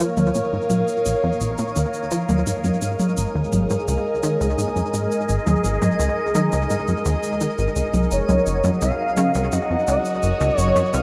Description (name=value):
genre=ambient, sequencer-driven space music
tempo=85 BPM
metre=4/4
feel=straight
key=unclear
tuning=A4 = 439 Hz
part: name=phased analog pad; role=sustained chords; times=0.0-11.0 s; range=Gb3 to F5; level=-26 LUFS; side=equal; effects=phaser, chorus
part: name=plucky analog bass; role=riff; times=0.0-11.0 s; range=Gb1 to F3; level=-25 LUFS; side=equal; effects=subtle chorus, delay
part: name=twinkling granular texture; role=texture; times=0.0-11.0 s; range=Eb4 to Eb5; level=-38 LUFS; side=equal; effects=built-in reverb
part: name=electronic toms and shaker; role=percussion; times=0.2-11.0 s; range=none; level=-27 LUFS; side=equal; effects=delay
part: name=expressive synth lead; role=melody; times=8.1-11.0 s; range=Db5 to F5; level=-24 LUFS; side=equal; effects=analog chorus, delay
room=wet lush hall reverb, RT60 2.6 s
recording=none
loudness=-21 LUFS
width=mono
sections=0.0-11.0 A section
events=fade-in on synth texture 0.0-11.0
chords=0.0 Bbm; 2.5 Absus2; 8.1 Gb